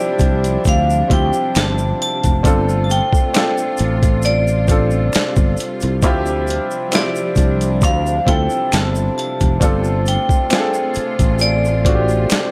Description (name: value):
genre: R&B, neo-soul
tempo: 67 BPM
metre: 4/4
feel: swing 54% on 16ths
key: D minor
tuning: A4 = 440 Hz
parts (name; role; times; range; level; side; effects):
- vibraphone with hard mallets; melody; 0.0-12.5 s; D5 to A5; -23 LUFS; equal; slapback echo
- clear grand piano; accompaniment; 0.0-12.5 s; C4 to A4; -23 LUFS; equal; none
- muted studio string section; sustained chords; 0.0-12.5 s; C3 to F4; -29 LUFS; equal; none
- sustaining fretless electric bass; bass; 0.2-12.3 s; F1 to D2; -20 LUFS; equal; subtle chorus
- boom bap sampler-style drum kit; drums; 0.2-12.5 s; hi-hat, kick drum, snare drum; -20 LUFS; equal; none
- tube shaker and finger snaps; percussion; 0.2-12.5 s; none; -33 LUFS; equal; none
room: studio reverb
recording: none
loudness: -16 LUFS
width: mono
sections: 0.0-12.5 A section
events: none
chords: 0.0 Dm11; 2.4 G9sus4; 6.0 Dm11; 9.6 G9sus4